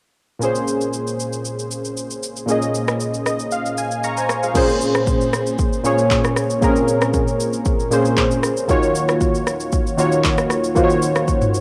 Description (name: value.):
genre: amapiano.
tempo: 116 BPM.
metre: 4/4.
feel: straight.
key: Bb minor.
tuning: A4 = 439 Hz.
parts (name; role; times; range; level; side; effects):
warm analog keys; accompaniment; 0.4-11.6 s; Bb2 to Db6; -20 LUFS; equal; chorus, cassette tape.
afro-pop drum kit; drums; 0.4-11.6 s; crash cymbal, handclaps, kick drum, rim click, shaker, toms; -24 LUFS; equal; cassette tape.
room: light reverb.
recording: home recording on cassette.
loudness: -19 LUFS.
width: mono.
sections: 0.4-4.6 A section; 4.6-11.6 B section.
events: synth keys fill 3.0-4.6.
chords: 0.4 Bbm7; 8.7 Ebm7.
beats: | 0.42 0.94 1.45 1.97 | 2.49 3.00 3.52 4.04 | 4.56 5.07 5.59 6.11 | 6.63 7.14 7.66 8.18 | 8.69 9.21 9.73 10.25 | 10.76 11.28.